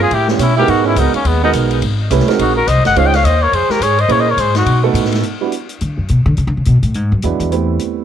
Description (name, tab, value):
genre	jazz, small-group swing and bop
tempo	211 BPM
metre	4/4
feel	swing 60% on 8ths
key	G# minor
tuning	A4 = 440 Hz
part	warm trumpet	melody	0.0-4.8 s	B3 to G5	-16 LUFS	left 4 dB	tape echo
part	clear alto saxophone	second line	0.0-4.8 s	G3 to D#5	-20 LUFS	right 10 dB	none
part	upright bass	bass	0.0-7.8 s	F#1 to D3	-15 LUFS	left 1 dB	none
part	open jazz drum kit	drums	0.1-7.9 s	hi-hat, ride cymbal, snare drum	-25 LUFS	left 6 dB	none
part	warm upright piano	accompaniment	0.3-8.0 s	F#3 to B#4	-17 LUFS	right 10 dB	none
room	light reverb, small room ambience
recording	1960s-style stereo with parts hard left and right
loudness	-12 LUFS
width	side -9 dB against mid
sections	0.0-5.2 A section; 5.2-8.0 B section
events	upright bass solo 5.2-8.0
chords	0.1 A9; 0.7 G#m7; 1.8 G#7; 3.0 C#maj7; 4.1 A#m7b5; 4.7 B7; 5.2 E7(no3) (rootless); 6.4 Aadd9; 6.9 E7; 7.5 Am9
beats	0.11 0.40 | 0.68 0.96 1.25 1.53 | 1.82 2.10 2.39 2.67 | 2.95 3.24 3.52 3.81 | 4.09 4.38 4.66 4.95 | 5.23 5.51 5.80 6.08 | 6.37 6.65 6.94 7.22 | 7.51 7.79